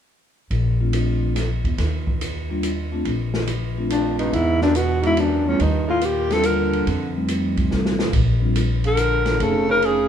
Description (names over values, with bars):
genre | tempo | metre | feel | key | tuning
jazz, small-group swing and bop | 142 BPM | 3/4 | swing 68% on 8ths | Bb major | A4 = 439 Hz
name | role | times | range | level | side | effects
upright bass | bass | 0.5-10.1 s | F1 to F2 | -23 LUFS | equal | none
open jazz drum kit | drums | 0.5-10.0 s | hi-hat, kick drum, ride cymbal, snare drum | -27 LUFS | right 1 dB | none
vibraphone with soft mallets | accompaniment | 0.8-10.1 s | G3 to G#4 | -25 LUFS | equal | none
mellow alto saxophone | melody | 3.9-6.9, 8.9-10.1 s | Db4 to Bb4 | -20 LUFS | left 2 dB | none
warm baritone saxophone | second line | 3.9-10.1 s | E2 to D3 | -27 LUFS | right 3 dB | none
room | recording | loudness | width
light reverb | band playing live in one room | -18 LUFS | side -9 dB against mid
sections
0.5-3.0 A section; 3.0-10.1 B section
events
drum fill 7.7-8.1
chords
0.5 Bbmaj9; 1.8 Ebmaj7(no3); 3.0 Bbmaj7; 4.3 E9; 5.6 Ebmaj9; 6.9 F9; 8.1 Bb; 9.4 F7alt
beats
| 0.51 0.93 1.35 | 1.78 2.20 2.62 | 3.05 3.47 3.90 | 4.32 4.74 5.17 | 5.59 6.01 6.44 | 6.86 7.28 7.71 | 8.13 8.55 8.98 | 9.40 9.82